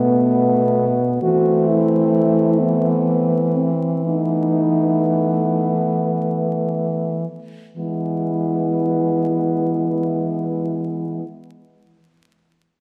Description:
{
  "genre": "classical, lyrical piece for horn quartet",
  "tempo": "28-44 BPM (dotted quarters)",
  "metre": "6/8",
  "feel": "rubato",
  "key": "E major",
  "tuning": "A4 = 440 Hz",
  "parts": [
    { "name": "dark French horn", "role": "melody", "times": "0.0-11.2 s", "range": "B3 to F#4", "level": "-23 LUFS", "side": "equal", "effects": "none" },
    { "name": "warm French horn", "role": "second line", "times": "0.0-11.2 s", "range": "B3 to C4", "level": "-27 LUFS", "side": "equal", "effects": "none" },
    { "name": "mellow French horn", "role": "accompaniment", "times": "0.0-11.2 s", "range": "G#3 to A3", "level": "-26 LUFS", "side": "equal", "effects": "none" },
    { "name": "mellow French horn", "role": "bass", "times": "0.0-11.2 s", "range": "B2 to E3", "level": "-24 LUFS", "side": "equal", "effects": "none" }
  ],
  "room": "moderate concert hall reverb, RT60 2.0 s",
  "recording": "vinyl crackle",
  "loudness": "-19 LUFS",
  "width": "mono",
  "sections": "0.0-7.8 A section; 7.8-11.8 B section",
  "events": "slowing down 0.0-7.8",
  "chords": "0.0 Asus2/B; 1.2 Am/E; 7.8 E",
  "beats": "| 1.22 2.59 | 4.05 5.76 | 7.77 9.76"
}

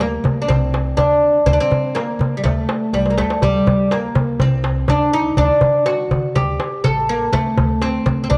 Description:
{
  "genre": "Arabic maqam ensemble",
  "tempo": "123 BPM",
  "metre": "4/4",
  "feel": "straight",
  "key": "D maqam hijaz",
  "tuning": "A4 = 441 Hz",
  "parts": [
    { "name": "oud", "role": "melody", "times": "0.0-8.4 s", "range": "G3 to A4", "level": "-20 LUFS", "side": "equal", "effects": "none" },
    { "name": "upright bass", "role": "bass", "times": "0.0-8.4 s", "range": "A1 to D3", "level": "-25 LUFS", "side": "equal", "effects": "none" },
    { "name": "darbuka", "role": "percussion", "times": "0.0-8.4 s", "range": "none", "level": "-22 LUFS", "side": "equal", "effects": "none" }
  ],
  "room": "light reverb",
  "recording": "home recording on cassette",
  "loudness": "-17 LUFS",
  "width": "mono",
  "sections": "0.0-8.4 A section",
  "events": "drum fill 2.9-3.4",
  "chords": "none",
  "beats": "0.00 0.49 0.98 | 1.47 1.96 2.45 2.94 | 3.42 3.91 4.40 4.89 | 5.38 5.87 6.36 6.84 | 7.33 7.82 8.31"
}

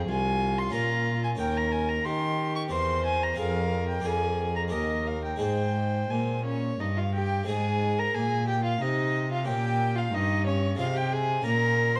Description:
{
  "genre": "classical, baroque-style sonata movement with continuo",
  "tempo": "90 BPM",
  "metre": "3/4",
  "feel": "straight",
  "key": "Ab major",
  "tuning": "A4 = 441 Hz",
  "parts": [
    { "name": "rich violin", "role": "melody", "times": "0.0-12.0 s", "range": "Db4 to C5", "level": "-35 LUFS", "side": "equal", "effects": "none" },
    { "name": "harpsichord", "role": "accompaniment", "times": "0.0-12.0 s", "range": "C2 to C5", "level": "-37 LUFS", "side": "equal", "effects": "none" },
    { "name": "rich cello", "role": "bass", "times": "0.0-12.0 s", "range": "C2 to Eb3", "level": "-31 LUFS", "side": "equal", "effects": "none" },
    { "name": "rich violin", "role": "second line", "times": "0.1-12.0 s", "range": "Db5 to Db6", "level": "-32 LUFS", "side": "equal", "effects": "none" }
  ],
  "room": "light reverb",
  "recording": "close, detailed microphones, vinyl crackle",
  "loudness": "-27 LUFS",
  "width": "mono",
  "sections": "0.0-7.5 A section; 7.5-12.0 B section",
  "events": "none",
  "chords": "0.0 Fm; 0.7 Bbm; 1.4 Eb7; 2.7 C7/E; 3.4 Fm; 4.1 Bb7/F; 4.7 Eb; 5.4 Ab; 9.5 Gdim/Bb; 10.8 Ab/C; 11.5 Bbm",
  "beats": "0.09 0.74 | 1.40 2.06 2.73 | 3.39 4.05 4.73 | 5.41 6.11 6.80 | 7.48 8.15 8.81 | 9.47 10.13 10.79 | 11.45"
}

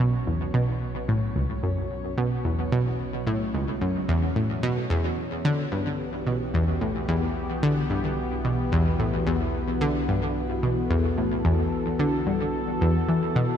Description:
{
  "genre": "ambient, sequencer-driven space music",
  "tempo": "110 BPM",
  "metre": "4/4",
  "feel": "straight",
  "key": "unclear",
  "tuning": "A4 = 440 Hz",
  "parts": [
    { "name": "sweeping resonant pad", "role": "sustained chords", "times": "0.0-13.6 s", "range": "B2 to C#5", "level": "-30 LUFS", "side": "left 1 dB", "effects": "chorus, shimmer reverb" },
    { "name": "analog pluck", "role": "riff", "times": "0.0-13.5 s", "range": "C#2 to E3", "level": "-24 LUFS", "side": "equal", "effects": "chorus, tape echo, shimmer reverb" },
    { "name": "round analog bass", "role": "bass", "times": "0.0-13.6 s", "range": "B1", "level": "-36 LUFS", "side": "equal", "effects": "none" }
  ],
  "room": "moderate lush hall reverb, RT60 2.6 s",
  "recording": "dreamy mix soaked in reverb",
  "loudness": "-23 LUFS",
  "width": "side -9 dB against mid",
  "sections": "0.0-13.6 A section",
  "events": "fade-in on analog synth pad 0.0-13.6; fade-in on analog synth bass 0.0-13.6",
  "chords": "0.0 Bsus2; 4.9 Em/B",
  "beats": "| 0.54 1.09 1.63 2.18 | 2.72 3.27 3.81 4.36 | 4.90 5.45 6.00 6.54 | 7.09 7.63 8.18 8.72 | 9.27 9.81 10.36 10.90 | 11.45 11.99 12.54 13.09"
}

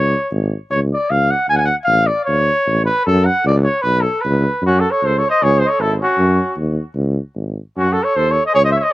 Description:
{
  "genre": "balkan folk",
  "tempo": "153 BPM",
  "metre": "2/4",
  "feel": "straight",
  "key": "F# dorian sharp4 from 4.6 s",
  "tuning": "A4 = 440 Hz",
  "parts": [
    { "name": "mellow trumpet", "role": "second line", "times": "0.0-8.9 s", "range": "C#4 to G#5", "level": "-18 LUFS", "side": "equal", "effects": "none" },
    { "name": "mellow tuba", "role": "bass", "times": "0.0-8.8 s", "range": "G#1 to F#2", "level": "-18 LUFS", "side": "equal", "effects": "none" },
    { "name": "warm flugelhorn", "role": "melody", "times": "4.7-8.9 s", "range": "F#4 to E5", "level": "-15 LUFS", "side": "equal", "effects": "none" }
  ],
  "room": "little or no reverb",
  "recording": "recorded outdoors, with no room sound",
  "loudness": "-14 LUFS",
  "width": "side -16 dB against mid",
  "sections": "0.0-4.6 A section; 4.6-8.9 B section",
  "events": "trumpet solo 0.0-4.6",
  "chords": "0.0 C#5; 1.5 D5; 3.1 F#5; 3.8 Asus2/B; 4.2 Bsus2/C#; 4.6 F#5; 5.4 C#5; 6.2 F#5; 7.0 C#5; 7.8 D#m7b5",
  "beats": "0.33 | 0.72 1.11 | 1.50 1.89 | 2.28 2.67 | 3.06 3.45 | 3.85 4.24 | 4.63 5.02 | 5.42 5.81 | 6.20 6.59 | 6.99 7.38 | 7.77 8.17 | 8.56"
}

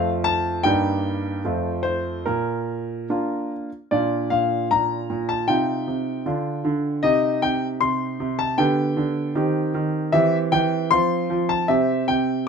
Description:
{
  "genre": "classical-period piano sonatina",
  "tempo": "77 BPM",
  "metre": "2/4",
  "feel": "rubato",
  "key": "Bb major",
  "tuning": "A4 = 439 Hz",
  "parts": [
    { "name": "clear concert grand piano", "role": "solo", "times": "0.0-12.5 s", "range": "F2 to C6", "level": "-20 LUFS", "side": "equal", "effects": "none" }
  ],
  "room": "light reverb",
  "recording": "minimal, uncompressed stereo recording",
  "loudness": "-20 LUFS",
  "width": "side -6 dB against mid",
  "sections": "0.0-3.9 A section; 3.9-12.5 B section",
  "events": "none",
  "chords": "0.0 F; 0.6 Eb/G; 1.4 F; 2.3 Bb; 5.5 F5/C; 6.3 Dmadd11; 7.0 Cm; 8.6 G/D; 9.4 Cm/Eb; 10.1 C/E; 10.9 F5; 11.7 C",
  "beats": "| 0.65 1.44 | 2.26 3.10 | 3.92 4.71 | 5.50 6.27 | 7.04 7.82 | 8.59 9.36 | 10.14 10.92 | 11.70"
}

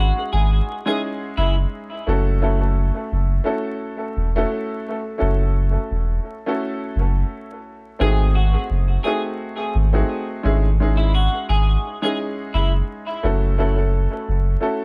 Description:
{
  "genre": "hip hop, boom-bap hip-hop",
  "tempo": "86 BPM",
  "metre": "4/4",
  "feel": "swing 56% on 16ths",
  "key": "C# harmonic minor",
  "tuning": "A4 = 440 Hz",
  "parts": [
    { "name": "semi-hollow electric guitar", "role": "melody", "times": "0.0-1.6, 8.0-12.7 s", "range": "E4 to G#4", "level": "-29 LUFS", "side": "equal", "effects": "analog chorus, high-pass filter, low-pass filter, analog delay" },
    { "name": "warm upright piano", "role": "accompaniment", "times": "0.0-14.8 s", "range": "G#3 to A4", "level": "-27 LUFS", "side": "equal", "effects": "high-pass filter, low-pass filter, analog delay" },
    { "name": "saturated sub bass", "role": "bass", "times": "0.0-14.6 s", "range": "E1 to G#1", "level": "-20 LUFS", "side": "equal", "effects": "none" }
  ],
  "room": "studio reverb",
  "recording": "echo-heavy mix, vinyl crackle, faint mains hum",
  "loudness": "-21 LUFS",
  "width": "mono",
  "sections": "0.0-14.8 A section",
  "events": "none",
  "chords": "0.0 C#madd9/G#; 2.1 F#m7; 8.0 G#7b9; 10.4 C#madd9/G#; 13.2 F#m7",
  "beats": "0.33 1.02 1.72 | 2.42 3.12 3.81 4.51 | 5.21 5.91 6.61 7.30 | 8.00 8.70 9.40 10.09 | 10.79 11.49 12.19 12.88 | 13.58 14.28"
}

